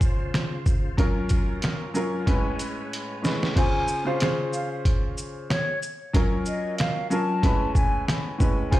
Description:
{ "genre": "hip hop, boom-bap hip-hop", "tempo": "93 BPM", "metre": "4/4", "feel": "swing 56% on 16ths", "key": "Db major", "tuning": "A4 = 441 Hz", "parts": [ { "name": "clear upright piano", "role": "accompaniment", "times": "0.0-8.8 s", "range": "A2 to C5", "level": "-27 LUFS", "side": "equal", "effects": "cassette tape, high-pass filter, low-pass filter" }, { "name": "bright tonewheel organ", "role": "sustained chords", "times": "0.0-3.6 s", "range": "Gb2 to C#5", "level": "-35 LUFS", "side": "equal", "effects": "chorus vibrato, slow rotary speaker, high-pass filter, low-pass filter" }, { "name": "trip hop sampler-style drum kit", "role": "drums", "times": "0.0-8.8 s", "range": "crash cymbal, hi-hat, kick drum, shaker, snare drum", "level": "-24 LUFS", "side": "equal", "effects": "overdrive" }, { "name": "mellow silver concert flute", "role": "melody", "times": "3.6-8.8 s", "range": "Db5 to A5", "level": "-29 LUFS", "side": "left 1 dB", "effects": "high-pass filter, low-pass filter, digital delay" } ], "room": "digital ambience", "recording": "played on a big sound system in a bare room, stone room reverb", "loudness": "-22 LUFS", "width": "side -15 dB against mid", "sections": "0.0-3.6 A section; 3.6-8.8 B section", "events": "drum fill 2.3-3.6", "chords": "0.0 Dbmaj7; 1.0 Gbmaj7; 2.3 Amaj9; 3.6 Dbmaj7; 6.1 Gbmaj7; 7.4 Amaj9" }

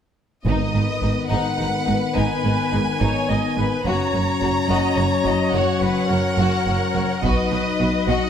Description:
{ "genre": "cinematic, epic orchestral film score", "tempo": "71 BPM (dotted quarters)", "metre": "12/8", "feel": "straight", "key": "G# minor", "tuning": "A4 = 440 Hz", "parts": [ { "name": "rich studio violin section", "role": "melody", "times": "0.4-8.3 s", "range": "D#5 to A#5", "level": "-26 LUFS", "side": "left 1 dB", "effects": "none" }, { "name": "mellow French horn section", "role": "sustained chords", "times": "0.4-8.3 s", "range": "D#3 to D#4", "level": "-24 LUFS", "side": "left 4 dB", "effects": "none" }, { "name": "rich studio violin section", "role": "second line", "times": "0.5-8.3 s", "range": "D#4 to D#5", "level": "-27 LUFS", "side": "left 2 dB", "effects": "none" }, { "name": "rich symphonic cello section", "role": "bass", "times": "0.5-8.2 s", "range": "F#2 to B2", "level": "-27 LUFS", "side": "right 3 dB", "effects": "none" }, { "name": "rich symphonic double bass section", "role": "bass", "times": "0.5-8.2 s", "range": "F#1 to B1", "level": "-25 LUFS", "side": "right 3 dB", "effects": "none" }, { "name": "taiko ensemble", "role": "drums", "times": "0.5-1.6, 7.2-8.3 s", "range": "none", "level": "-27 LUFS", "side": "equal", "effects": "none" }, { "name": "timpani", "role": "percussion", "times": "0.5-1.3 s", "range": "G#2", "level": "-30 LUFS", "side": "right 2 dB", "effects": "none" }, { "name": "rich studio viola section", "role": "accompaniment", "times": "2.2-8.3 s", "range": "A#4 to D#5", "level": "-26 LUFS", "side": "left 2 dB", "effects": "none" } ], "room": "moderate scoring stage reverb, RT60 2.2 s", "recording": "none", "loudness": "-18 LUFS", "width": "side -8 dB against mid", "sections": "0.5-8.3 A section", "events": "none", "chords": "0.5 G#m; 3.8 F#; 7.2 B" }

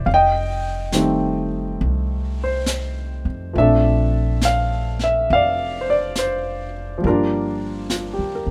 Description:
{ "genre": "jazz ballad", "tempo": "69 BPM", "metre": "4/4", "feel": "swing 67% on 8ths", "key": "F major", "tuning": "A4 = 440 Hz", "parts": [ { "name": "warm concert grand piano", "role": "accompaniment", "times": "0.0-8.5 s", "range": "Eb3 to G5", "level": "-22 LUFS", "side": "equal", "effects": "none" }, { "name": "upright bass", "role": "bass", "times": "0.0-8.5 s", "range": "F1 to G2", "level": "-26 LUFS", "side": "equal", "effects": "none" }, { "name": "vintage brush drum kit", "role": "drums", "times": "0.1-8.5 s", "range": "brushed snare drum, hi-hat, snare drum", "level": "-31 LUFS", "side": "equal", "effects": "none" } ], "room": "light reverb", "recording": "none", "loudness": "-20 LUFS", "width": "mono", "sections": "0.0-8.5 A section", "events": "none", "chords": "0.1 F9; 3.5 Bbmaj9; 7.0 Gm7" }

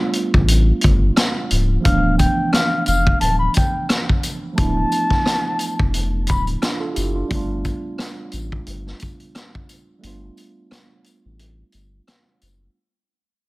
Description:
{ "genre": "hip hop, boom-bap hip-hop", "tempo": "88 BPM", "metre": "4/4", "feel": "swing 57% on 16ths", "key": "unclear", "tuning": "A4 = 438 Hz", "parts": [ { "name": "mellow tine electric piano", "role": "accompaniment", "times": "0.0-12.8 s", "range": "E3 to A4", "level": "-25 LUFS", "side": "right 3 dB", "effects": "cassette tape, high-pass filter, low-pass filter" }, { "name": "vintage drum kit", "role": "drums", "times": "0.1-12.6 s", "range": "hi-hat, kick drum, rim click, snare drum", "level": "-19 LUFS", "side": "equal", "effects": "none" }, { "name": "saturated sub bass", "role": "bass", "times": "0.3-12.7 s", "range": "C#1 to A1", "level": "-19 LUFS", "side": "equal", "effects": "none" }, { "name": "trumpet with cup mute", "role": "melody", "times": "1.8-6.5 s", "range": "F5 to B5", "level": "-22 LUFS", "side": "left 1 dB", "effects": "high-pass filter, low-pass filter" }, { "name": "tambourine", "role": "percussion", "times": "2.2-12.6 s", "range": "none", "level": "-34 LUFS", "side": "left 5 dB", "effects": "none" } ], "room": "small room ambience", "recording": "none", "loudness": "-16 LUFS", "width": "side -22 dB against mid", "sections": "0.0-12.8 A section", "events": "fade-out 0.0-12.8; break 10.0-12.8", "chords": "0.0 G7; 1.9 Dm69; 7.3 G7" }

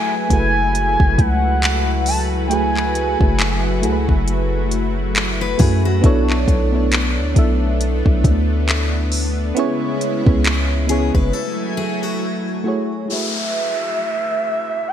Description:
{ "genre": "contemporary R&B", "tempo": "68 BPM", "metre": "4/4", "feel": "swing 58% on 16ths", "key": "F# minor", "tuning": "A4 = 440 Hz", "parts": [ { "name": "gliding portamento lead", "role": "melody", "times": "0.0-3.8, 13.1-14.9 s", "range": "E5 to A5", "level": "-21 LUFS", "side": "right 1 dB", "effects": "chorus, ping-pong delay" }, { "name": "mellow FM electric piano", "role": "accompaniment", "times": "0.0-14.9 s", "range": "G#3 to E5", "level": "-23 LUFS", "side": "right 2 dB", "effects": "chorus" }, { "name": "lush unison pad", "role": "sustained chords", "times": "0.0-13.1 s", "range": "C#3 to G#5", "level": "-24 LUFS", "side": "left 1 dB", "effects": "chorus" }, { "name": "warm 808-style bass", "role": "bass", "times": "0.3-11.3 s", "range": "F#1 to F#2", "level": "-19 LUFS", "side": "equal", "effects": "none" }, { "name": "smooth R&B drum kit", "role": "drums", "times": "0.3-11.3 s", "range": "handclaps, hi-hat, kick drum", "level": "-18 LUFS", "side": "equal", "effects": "vintage 12-bit sampler grit, gated reverb" }, { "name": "picked steel-string acoustic guitar", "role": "arpeggios", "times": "5.4-13.1 s", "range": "F#4 to B4", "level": "-26 LUFS", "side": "left 8 dB", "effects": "ping-pong delay" }, { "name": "downlifter", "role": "sound effects", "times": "13.1-14.9 s", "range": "none", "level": "-25 LUFS", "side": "left 1 dB", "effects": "none" } ], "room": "light reverb, digital ambience", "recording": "bright 1980s-style digital production", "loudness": "-15 LUFS", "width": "side -10 dB against mid", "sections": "0.0-13.1 A section; 13.1-14.9 B section", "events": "break 11.3-13.1", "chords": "0.0 F#m11; 6.0 Bm11; 9.6 C#m7; 11.3 F#m9; 13.1 F#m11" }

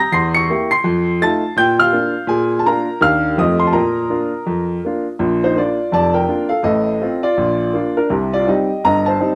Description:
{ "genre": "jazz, stride piano", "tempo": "165 BPM", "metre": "4/4", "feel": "swing 60% on 8ths", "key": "Bb major", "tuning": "A4 = 440 Hz", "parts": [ { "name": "clear baby grand piano", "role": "solo", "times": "0.0-9.3 s", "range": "F1 to C#7", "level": "-17 LUFS", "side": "equal", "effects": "none" } ], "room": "light reverb", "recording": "none", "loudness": "-17 LUFS", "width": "mono", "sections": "0.0-5.2 A section; 5.2-9.3 B section", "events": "none", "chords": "0.1 Edim7; 0.8 F7; 1.6 Bb; 2.3 Bb7; 3.0 Ebmaj7; 3.4 F9; 3.7 Bb; 6.7 F7/A; 7.4 Bb; 8.1 Cm" }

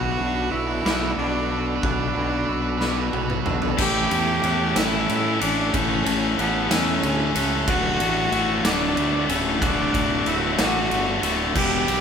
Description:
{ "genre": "post-rock", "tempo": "62 BPM (dotted quarters)", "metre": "6/8", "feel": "straight", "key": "D major", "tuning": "A4 = 440 Hz", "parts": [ { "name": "bright cello", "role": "melody", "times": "0.0-12.0 s", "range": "B3 to G4", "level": "-26 LUFS", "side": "equal", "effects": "none" }, { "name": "glassy FM pad", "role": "sustained chords", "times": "0.0-3.7 s", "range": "A4 to B5", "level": "-39 LUFS", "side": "left 2 dB", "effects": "none" }, { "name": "glockenspiel with soft plastic mallets", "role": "arpeggios", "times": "0.0-12.0 s", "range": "D6 to G6", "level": "-33 LUFS", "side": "right 3 dB", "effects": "none" }, { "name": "semi-hollow electric guitar", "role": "arpeggios", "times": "0.0-3.8 s", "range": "B2 to B4", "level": "-33 LUFS", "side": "left 1 dB", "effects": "vibrato effect" }, { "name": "thick fuzz guitar", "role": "riff", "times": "0.0-12.0 s", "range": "D2 to B4", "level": "-28 LUFS", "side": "right 6 dB", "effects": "distortion" }, { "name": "fuzz fingered electric bass", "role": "bass", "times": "0.0-12.0 s", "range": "D1 to A2", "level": "-27 LUFS", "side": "left 1 dB", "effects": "overdrive" }, { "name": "huge arena drum kit", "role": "drums", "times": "0.9-12.0 s", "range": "crash cymbal, kick drum, ride cymbal, snare drum, toms", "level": "-26 LUFS", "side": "equal", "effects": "none" }, { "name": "tight distorted guitar", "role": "riff", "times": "3.8-12.0 s", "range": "D2 to A4", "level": "-25 LUFS", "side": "left 8 dB", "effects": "distortion" } ], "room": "moderate large studio reverb, RT60 1.2 s", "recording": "band playing live in one room", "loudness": "-19 LUFS", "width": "side -7 dB against mid", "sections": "0.0-3.8 A section; 3.8-12.0 B section", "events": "build-up 0.0-3.8; drum fill 2.8-3.8", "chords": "0.0 Bm7; 3.8 A7; 7.7 D6" }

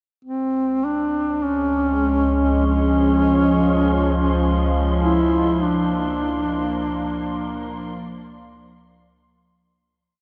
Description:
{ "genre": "dark ambient drone", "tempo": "free time", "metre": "none", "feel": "none", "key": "unclear", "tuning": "A4 = 442 Hz", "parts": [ { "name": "mellow duduk", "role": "melody", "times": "0.2-8.0 s", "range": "B#3 to E4", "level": "-22 LUFS", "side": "equal", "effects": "shimmer reverb, diffuse ambient delay" }, { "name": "deep dark ambient pad", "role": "sustained chords", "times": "1.9-9.8 s", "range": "E#3 to D5", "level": "-27 LUFS", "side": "equal", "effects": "chorus, built-in reverb, shimmer reverb" }, { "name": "deep rumbling drone", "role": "drone", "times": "1.4-9.9 s", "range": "C#2 to E#3", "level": "-26 LUFS", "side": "equal", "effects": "built-in reverb, phaser" }, { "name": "wind-like tuned noise texture", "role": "texture", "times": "1.5-9.8 s", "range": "B#5", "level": "-39 LUFS", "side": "equal", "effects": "built-in reverb, shimmer reverb" } ], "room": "wet huge ambient reverb, RT60 8.4 s", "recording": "worn, warbling old tape, cassette tape, warbly pitch drift", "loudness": "-20 LUFS", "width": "mono", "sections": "0.2-9.8 A section", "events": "fade-in on synth texture 0.2-9.8; filter sweep on synth drone 0.2-9.8; fade-out 5.0-9.8", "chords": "0.2 C#; 5.0 A#" }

